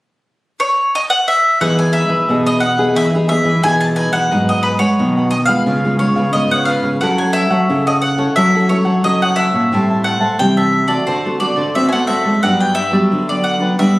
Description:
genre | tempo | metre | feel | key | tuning
samba | 89 BPM | 4/4 | straight | E major | A4 = 440 Hz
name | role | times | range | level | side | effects
mandolin | melody | 0.6-14.0 s | B4 to A5 | -16 LUFS | equal | plate reverb
cavaquinho | accompaniment | 1.6-14.0 s | D#4 to A5 | -23 LUFS | right 1 dB | none
nylon-string guitar | accompaniment | 1.6-14.0 s | G2 to A4 | -19 LUFS | equal | none
nylon-string guitar | bass | 1.6-14.0 s | G2 to C4 | -17 LUFS | equal | none
room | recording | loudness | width
moderate studio reverb, RT60 0.7 s | recorded on a phone in the room, studio reverb | -12 LUFS | side -20 dB against mid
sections
0.0-1.6 A section; 1.6-14.0 B section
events
none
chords
0.0 N.C.; 1.6 Emaj7; 4.3 G#m7; 5.7 C#7; 7.0 F#m7; 9.7 Am7; 11.1 D7; 12.4 Gmaj7

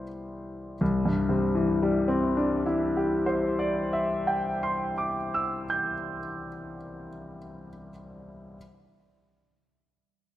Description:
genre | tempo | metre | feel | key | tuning
classical, impressionist solo piano | 42 BPM | 4/4 | rubato | C major | A4 = 440 Hz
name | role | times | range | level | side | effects
clear concert grand piano | solo | 0.0-8.6 s | C2 to G6 | -26 LUFS | left 1 dB | none
room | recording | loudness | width
moderate concert hall reverb, RT60 2.3 s | none | -24 LUFS | side -13 dB against mid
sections
0.8-6.4 A section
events
none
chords
0.0 Cmaj7; 0.8 Cadd9

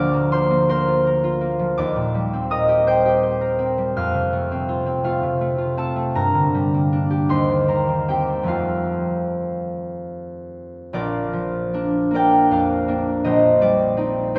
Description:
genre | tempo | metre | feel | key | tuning
classical, solo harp piece | 48-56 BPM (dotted quarters) | 6/8 | rubato | Bb major | A4 = 439 Hz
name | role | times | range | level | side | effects
concert harp | solo | 0.0-14.4 s | Bb1 to G6 | -20 LUFS | equal | none
room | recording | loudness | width
wet church reverb, RT60 2.8 s | recorded in a church or concert hall | -20 LUFS | mono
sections
0.0-10.9 A section; 10.9-14.4 B section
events
none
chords
0.0 Bb/D; 1.8 Eb6; 4.0 F; 6.2 Gm; 7.3 Cm/Eb; 8.5 F; 10.9 Bb; 13.2 Cm7/Bb

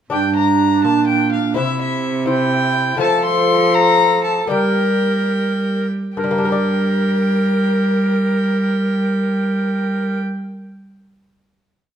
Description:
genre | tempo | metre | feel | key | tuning
classical, renaissance-style consort dance | 69-84 BPM (dotted quarters) | 6/8 | straight | G dorian | A4 = 440 Hz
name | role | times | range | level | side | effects
warm violin | melody | 0.1-10.2 s | E5 to C6 | -21 LUFS | left 4 dB | none
bass recorder | second line | 0.1-10.2 s | D4 to Bb4 | -20 LUFS | right 3 dB | none
lute | accompaniment | 0.1-10.5 s | G2 to D5 | -24 LUFS | left 5 dB | none
rich cello | bass | 0.1-10.2 s | G2 to G3 | -19 LUFS | right 1 dB | none
room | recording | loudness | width
wet stone room reverb, RT60 1.3 s | none | -15 LUFS | side -9 dB against mid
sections
0.1-6.2 A section; 6.2-9.7 final chord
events
slowing down 2.3-6.2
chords
0.1 Gm; 1.6 C; 3.0 F; 4.5 Gm

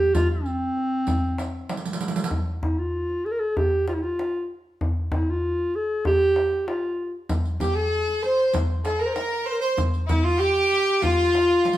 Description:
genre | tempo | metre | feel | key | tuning
Arabic maqam ensemble | 96 BPM | 4/4 | straight | F maqam rast | A4 = 440 Hz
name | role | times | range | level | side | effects
dark clarinet | melody | 0.0-11.8 s | C4 to C5 | -23 LUFS | equal | none
darbuka | percussion | 0.0-11.8 s | none | -26 LUFS | equal | none
riq | percussion | 0.1-2.3, 7.3-11.8 s | none | -32 LUFS | right 4 dB | none
bright chamber violin section | second line | 7.6-11.8 s | E4-50c to C5 | -25 LUFS | right 1 dB | none
room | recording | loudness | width
wet large studio reverb, RT60 1.1 s | band playing live in one room | -21 LUFS | side -14 dB against mid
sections
0.0-2.3 A section; 2.3-11.8 B section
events
drum fill 1.7-2.3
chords
none

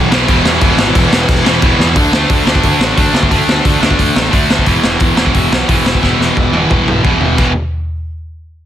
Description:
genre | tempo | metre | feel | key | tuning
punk rock | 177 BPM | 4/4 | straight | unclear | A4 = 440 Hz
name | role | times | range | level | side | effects
distorted electric guitar | riff | 0.0-7.5 s | E2 to D4 | -12 LUFS | equal | overdrive
fuzz picked electric bass | bass | 0.0-7.5 s | E1 to E2 | -18 LUFS | equal | overdrive
raw garage drum kit | drums | 0.1-7.5 s | crash cymbal, hi-hat, kick drum, snare drum, toms | -13 LUFS | equal | none
room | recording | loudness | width
little or no reverb | dense, heavily limited modern master | -9 LUFS | side -11 dB against mid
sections
0.0-2.0 A section; 2.0-7.4 B section; 7.4-8.7 C section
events
drum fill 1.8, 6.0-7.4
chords
0.0 E5; 2.0 D5; 4.7 E5

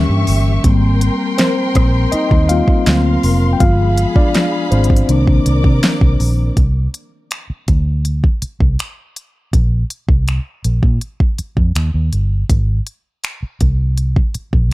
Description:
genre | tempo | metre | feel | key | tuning
contemporary R&B | 81 BPM | 4/4 | straight | C minor | A4 = 441 Hz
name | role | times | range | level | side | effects
mellow tine electric piano | accompaniment | 0.0-6.6 s | Eb3 to G5 | -17 LUFS | left 2 dB | medium stereo tremolo
warm studio string section | sustained chords | 0.0-6.6 s | G4 to D6 | -24 LUFS | left 2 dB | none
vintage muted fingered electric bass | bass | 0.0-14.7 s | E#1 to C3 | -15 LUFS | equal | none
smooth R&B drum kit | drums | 0.3-14.7 s | finger snaps, hi-hat, kick drum, rim click, snare drum | -15 LUFS | equal | none
room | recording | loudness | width
digital ambience | dark, warm production | -12 LUFS | side -18 dB against mid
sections
0.0-6.6 A section; 6.6-14.7 B section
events
tine electric piano solo 0.0-6.6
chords
0.0 Eb7b9 (rootless); 0.6 Abmaj9; 2.9 D7alt; 3.6 G7b9; 5.1 Cm9; 6.6 Csus2; 9.5 Bbsus2; 11.8 Eb; 12.5 Abadd9

